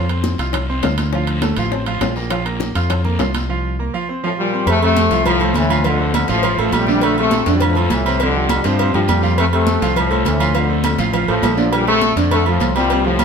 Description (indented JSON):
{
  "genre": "latin, salsa",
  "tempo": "204 BPM",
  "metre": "4/4",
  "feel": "straight",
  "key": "F major",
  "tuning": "A4 = 440 Hz",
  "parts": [
    { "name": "bright concert grand piano", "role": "accompaniment", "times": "0.0-13.2 s", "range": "C3 to F6", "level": "-21 LUFS", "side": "right 4 dB", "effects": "none" },
    { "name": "modern bright fingered electric bass", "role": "bass", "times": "0.0-13.2 s", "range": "A1 to G2", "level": "-20 LUFS", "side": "left 1 dB", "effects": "none" },
    { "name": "congas", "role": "percussion", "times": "0.1-13.2 s", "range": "none", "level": "-26 LUFS", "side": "right 2 dB", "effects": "none" },
    { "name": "timbales and agogo bells", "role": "percussion", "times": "0.1-13.2 s", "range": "none", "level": "-24 LUFS", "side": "right 3 dB", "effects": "none" },
    { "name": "bongos and cowbell", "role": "percussion", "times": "0.2-13.2 s", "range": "none", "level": "-27 LUFS", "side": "left 5 dB", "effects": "none" },
    { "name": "guiro", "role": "percussion", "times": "0.2-13.2 s", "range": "none", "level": "-32 LUFS", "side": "left 4 dB", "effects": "none" },
    { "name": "bright trombone section", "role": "melody", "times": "4.2-13.2 s", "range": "F2 to A3", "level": "-18 LUFS", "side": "left 2 dB", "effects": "none" }
  ],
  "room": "moderate stone room reverb, RT60 1.0 s",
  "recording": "band playing live in one room",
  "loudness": "-14 LUFS",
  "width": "side -6 dB against mid",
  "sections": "0.0-4.7 A section; 4.7-13.2 B section",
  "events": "break 3.5-4.7",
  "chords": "0.0 F5; 1.1 Dm7; 2.3 Bb5; 3.5 C7sus4; 4.7 Fmaj7; 5.8 Dm7; 7.0 Bbmaj7; 8.2 C7sus4; 9.4 Fmaj7; 10.5 Dm7; 11.7 Bbmaj7"
}